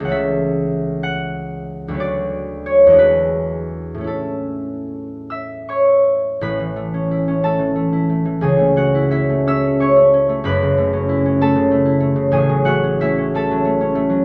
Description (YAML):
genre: classical, solo harp piece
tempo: 47-68 BPM (dotted quarters)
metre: 6/8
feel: rubato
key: A major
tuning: A4 = 440 Hz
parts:
  - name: concert harp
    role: solo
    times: 0.0-14.2 s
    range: F#1 to E6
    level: -17 LUFS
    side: equal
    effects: none
room: little or no reverb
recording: close, detailed microphones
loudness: -17 LUFS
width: mono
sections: 0.0-6.4 A section; 6.4-14.2 B section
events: none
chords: 0.1 A/C#; 2.0 Bm/D; 3.0 E9; 4.1 A; 8.4 A/C#; 10.4 F#m7; 12.3 F#m/A